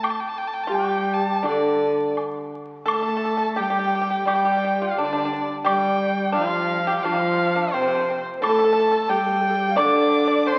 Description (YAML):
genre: chinese traditional, Chinese chamber ensemble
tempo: 86 BPM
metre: 4/4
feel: rubato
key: D yu mode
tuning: A4 = 440 Hz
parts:
  - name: clear erhu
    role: melody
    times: 0.0-10.6 s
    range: C5 to D6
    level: -28 LUFS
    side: equal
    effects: none
  - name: steel-string zither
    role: accompaniment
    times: 0.0-10.6 s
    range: A2 to G3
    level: -27 LUFS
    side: equal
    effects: none
  - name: woodblock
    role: percussion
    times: 0.0-9.9 s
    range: none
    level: -32 LUFS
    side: equal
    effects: none
  - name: breathy bright low xiao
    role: second line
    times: 0.7-10.6 s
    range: D4 to F5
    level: -30 LUFS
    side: equal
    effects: none
  - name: pipa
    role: second line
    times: 0.7-10.6 s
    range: C4 to D5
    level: -28 LUFS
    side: equal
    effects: none
  - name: rich cello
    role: second line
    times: 0.7-10.6 s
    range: C3 to D4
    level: -30 LUFS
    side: equal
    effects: none
room: wet concert hall reverb, RT60 2.2 s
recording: very old 78 rpm record, vinyl crackle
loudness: -22 LUFS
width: mono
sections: 0.0-2.9 A section; 2.9-10.6 B section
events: none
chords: none